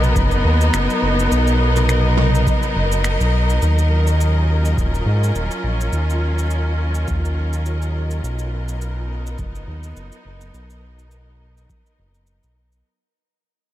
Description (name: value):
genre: ambient dub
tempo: 104 BPM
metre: 4/4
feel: swing 56% on 16ths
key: unclear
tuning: A4 = 440 Hz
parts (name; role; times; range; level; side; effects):
- bright studio string section; sustained chords; 0.0-12.8 s; F#3 to Eb5; -22 LUFS; left 1 dB; none
- round analog bass; bass; 0.0-12.8 s; Eb1 to Ab2; -18 LUFS; equal; tube saturation
- jazz brush drum kit; drums; 0.0-12.8 s; cabasa, finger snaps, toms; -28 LUFS; right 3 dB; dub echo
- electronic kick drum; drums; 0.2-11.8 s; none; -23 LUFS; equal; none
room: light reverb, studio ambience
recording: none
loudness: -16 LUFS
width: side -13 dB against mid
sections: 0.0-3.6 A section; 3.6-12.8 B section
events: band accent 3.0; fade-out 3.6-12.8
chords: 0.0 Bmaj7; 3.6 Ebm9; 8.2 Bmaj7